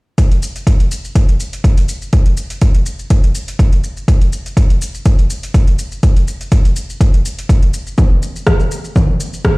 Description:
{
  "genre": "house",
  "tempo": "123 BPM",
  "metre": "4/4",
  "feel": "swing 54% on 16ths",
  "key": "none",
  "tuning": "none",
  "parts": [
    { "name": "deep house drum kit", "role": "drums", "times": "0.2-9.6 s", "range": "hi-hat, rim click, shaker, toms", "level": "-22 LUFS", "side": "left 1 dB", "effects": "overdrive" },
    { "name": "electronic kick drum", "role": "drums", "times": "0.2-9.6 s", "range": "none", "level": "-11 LUFS", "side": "equal", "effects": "overdrive" }
  ],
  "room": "digital ambience",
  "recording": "played on a big sound system in a bare room, stone room reverb",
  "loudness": "-12 LUFS",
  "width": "side -26 dB against mid",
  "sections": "0.2-8.0 A section; 8.0-9.6 B section",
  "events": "build-up 8.0-9.6; drum fill 8.0-9.6; filter sweep 8.0-9.6",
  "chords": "none"
}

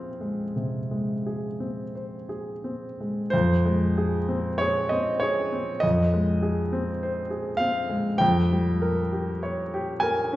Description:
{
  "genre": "classical, romantic nocturne for solo piano",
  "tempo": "42-51 BPM",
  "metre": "4/4",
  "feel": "rubato",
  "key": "F minor",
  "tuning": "A4 = 440 Hz",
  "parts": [
    { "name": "warm baby grand piano", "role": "solo", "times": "0.0-10.4 s", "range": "F2 to Ab5", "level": "-23 LUFS", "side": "equal", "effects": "none" }
  ],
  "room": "wet recital hall reverb, RT60 1.5 s",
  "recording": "heard from further back in the room, nothing above 7.9 kHz",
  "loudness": "-23 LUFS",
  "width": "side -15 dB against mid",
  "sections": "0.0-3.3 A section; 3.3-10.4 A section",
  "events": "none",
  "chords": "0.0 Fm; 8.2 Gdim/F"
}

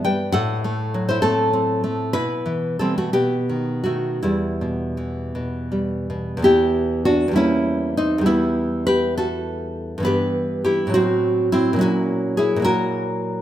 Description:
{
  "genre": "romantic piece for solo classical guitar",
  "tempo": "52-73 BPM (dotted quarters)",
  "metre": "6/8",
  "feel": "rubato",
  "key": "E minor",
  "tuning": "A4 = 440 Hz",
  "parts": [
    { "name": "nylon-string guitar", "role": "solo", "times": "0.0-13.4 s", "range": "E2 to G5", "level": "-18 LUFS", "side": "equal", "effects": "none" }
  ],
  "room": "moderate recital hall reverb, RT60 1.5 s",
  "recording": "minimal, uncompressed stereo recording",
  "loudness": "-18 LUFS",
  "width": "side -12 dB against mid",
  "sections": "0.0-6.4 A section; 6.4-13.4 B section",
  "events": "none",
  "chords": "0.3 F#dim/A; 2.2 Em/B; 3.1 B7; 4.2 Em; 7.4 Edim7; 8.3 Em; 10.1 Em/G; 10.9 F#dim/A; 11.8 F#7/A#"
}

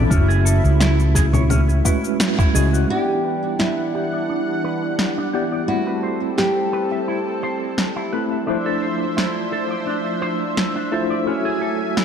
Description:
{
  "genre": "sunset chillout",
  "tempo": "86 BPM",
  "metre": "4/4",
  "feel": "straight",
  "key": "unclear",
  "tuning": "A4 = 440 Hz",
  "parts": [
    { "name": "tine electric piano", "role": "accompaniment", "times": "0.0-12.0 s", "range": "F3 to B5", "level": "-24 LUFS", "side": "moving between left 4 dB and right 5 dB", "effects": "overdrive, fast stereo tremolo, auto-pan, vintage 12-bit sampler grit, digital delay" },
    { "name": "lush unison pad", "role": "sustained chords", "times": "0.0-12.0 s", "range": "A2 to G#5", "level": "-26 LUFS", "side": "equal", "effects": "chorus" },
    { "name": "electric guitar with an envelope filter", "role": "arpeggios", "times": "0.0-12.0 s", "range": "C#4 to E5", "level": "-28 LUFS", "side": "right 2 dB", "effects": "low-pass filter, digital delay" },
    { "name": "fretless electric bass", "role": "bass", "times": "0.0-2.8 s", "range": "F#1 to C#2", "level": "-16 LUFS", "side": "equal", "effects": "tube saturation, wide subtle chorus" },
    { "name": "electronic cabasa, snare drum and congas", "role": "drums", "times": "0.1-12.0 s", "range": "none", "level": "-22 LUFS", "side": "equal", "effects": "overdrive" },
    { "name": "electronic kick drum", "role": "drums", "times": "0.1-2.5 s", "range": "none", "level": "-18 LUFS", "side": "equal", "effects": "none" },
    { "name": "nylon-string guitar", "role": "melody", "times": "2.9-8.1 s", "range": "E4 to G4", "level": "-24 LUFS", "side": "right 1 dB", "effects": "digital delay" }
  ],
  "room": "moderate lush hall reverb, RT60 2.2 s",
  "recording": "dark, warm production",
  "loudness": "-18 LUFS",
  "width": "side -8 dB against mid",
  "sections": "0.0-2.9 A section; 2.9-12.0 B section",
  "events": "band accent 2.2-2.6; filter sweep on clean electric guitar 2.9-12.0",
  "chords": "0.1 F#m9; 2.9 Em9; 5.7 Am9; 8.5 Dm9; 11.3 F#m9"
}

